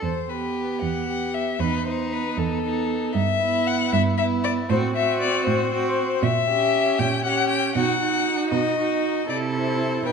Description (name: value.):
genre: quick classical-period movement for string quartet.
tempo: 78 BPM (dotted quarters).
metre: 6/8.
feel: rubato.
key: E minor.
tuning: A4 = 440 Hz.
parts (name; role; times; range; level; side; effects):
rich violin; melody; 0.0-10.1 s; A4 to G5; -24 LUFS; left 7 dB; none.
rich violin; second line; 0.0-10.1 s; D#4 to B4; -28 LUFS; left 1 dB; none.
rich cello; bass; 0.0-10.1 s; E2 to C3; -27 LUFS; right 5 dB; none.
rich viola; accompaniment; 0.3-10.1 s; B3 to E4; -27 LUFS; right 7 dB; none.
room: moderate scoring stage reverb, RT60 1.8 s.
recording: nothing above 10.7 kHz.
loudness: -20 LUFS.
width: side -6 dB against mid.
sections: 0.0-10.1 A section.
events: none.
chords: 0.0 Em; 3.1 Em/G; 4.7 F#dim/A; 6.2 A#dim7; 7.8 B; 9.3 Am/C.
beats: | 0.03 0.82 | 1.60 2.38 | 3.15 3.93 | 4.70 5.47 | 6.23 6.99 | 7.76 8.53 | 9.29 10.06.